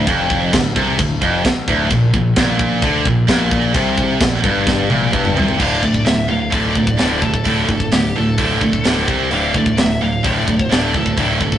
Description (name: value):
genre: heavy metal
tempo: 130 BPM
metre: 4/4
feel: straight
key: D minor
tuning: A4 = 440 Hz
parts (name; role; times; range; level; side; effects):
- distorted electric guitar; riff; 0.0-11.6 s; D2 to C4; -21 LUFS; left 5 dB; overdrive
- heavy high-gain guitar; riff; 0.0-11.6 s; D2 to C4; -18 LUFS; right 3 dB; distortion
- growling picked electric bass; bass; 0.0-11.6 s; D1 to D2; -22 LUFS; equal; overdrive
- tight metal drum kit; drums; 0.1-11.6 s; china cymbal, crash cymbal, hi-hat, kick drum, snare drum, toms; -19 LUFS; equal; none
- high-gain lead guitar; melody; 5.6-11.6 s; G4 to F5; -24 LUFS; left 3 dB; distortion
room: moderate stone room reverb, RT60 1.2 s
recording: rough rehearsal-room recording, tube saturation, nothing above 11.0 kHz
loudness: -13 LUFS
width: side -11 dB against mid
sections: 0.0-5.6 A section; 5.6-11.6 B section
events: drum fill 4.7-5.6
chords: 0.0 Dm; 1.9 Gmadd11; 5.6 D5; 9.1 C5; 9.3 D5